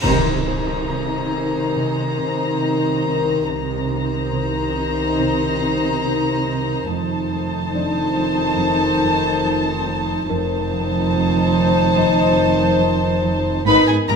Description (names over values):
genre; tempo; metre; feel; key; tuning
cinematic, suspense film score; 70 BPM; 4/4; straight; C dorian; A4 = 443 Hz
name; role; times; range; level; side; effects
warm chamber violin section; melody; 0.0-14.2 s; Ab5 to Cb6; -24 LUFS; left 1 dB; none
warm studio violin section; second line; 0.0-14.2 s; Ab4 to C5; -27 LUFS; left 2 dB; none
rich chamber viola section; accompaniment; 0.0-14.2 s; Eb4; -24 LUFS; left 1 dB; none
warm French horn section; sustained chords; 0.0-14.2 s; Eb3 to C5; -24 LUFS; left 4 dB; none
warm chamber cello section; riff; 0.0-14.2 s; F2 to C4; -29 LUFS; right 2 dB; none
clear chamber double bass section; bass; 0.0-14.2 s; F1 to C2; -26 LUFS; right 4 dB; none
dark chamber cello section; bass; 0.0-14.2 s; F2 to C3; -26 LUFS; right 4 dB; none
cymbal swell and impact; sound effects; 0.0-3.5 s; none; -28 LUFS; equal; none
celesta; texture; 0.0-14.2 s; C4 to Eb5; -30 LUFS; left 4 dB; none
room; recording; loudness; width
wet recital hall reverb, RT60 1.7 s; none; -17 LUFS; side -6 dB against mid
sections
0.0-14.2 A section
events
band accent 0.0-0.9; impact 0.0-3.5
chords
0.0 Cm7; 6.9 F7